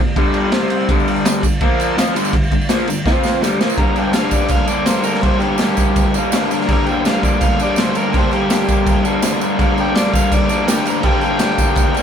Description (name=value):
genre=garage rock duo or trio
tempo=165 BPM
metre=4/4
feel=straight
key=G minor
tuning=A4 = 440 Hz
part: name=crunchy overdriven guitar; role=riff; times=0.0-12.0 s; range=G2 to F4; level=-17 LUFS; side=left 1 dB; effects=none
part: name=raw garage drum kit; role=drums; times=0.2-12.0 s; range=crash cymbal, kick drum, ride cymbal, snare drum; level=-17 LUFS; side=equal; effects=none
part: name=tambourine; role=percussion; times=0.9-12.0 s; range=none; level=-30 LUFS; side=right 9 dB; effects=none
part: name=overdriven harmonica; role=melody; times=3.8-12.0 s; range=F4 to Bb5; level=-22 LUFS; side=equal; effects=none
room=moderate stone room reverb, RT60 1.1 s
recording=band playing live in one room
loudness=-14 LUFS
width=side -8 dB against mid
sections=0.0-3.8 A section; 3.8-12.0 B section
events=drum fill 3.1-3.8; harmonica solo 3.8-12.0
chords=0.0 G5; 0.5 C5; 0.9 G5; 1.6 Bb5; 2.0 Gm; 3.1 F5; 3.4 Gm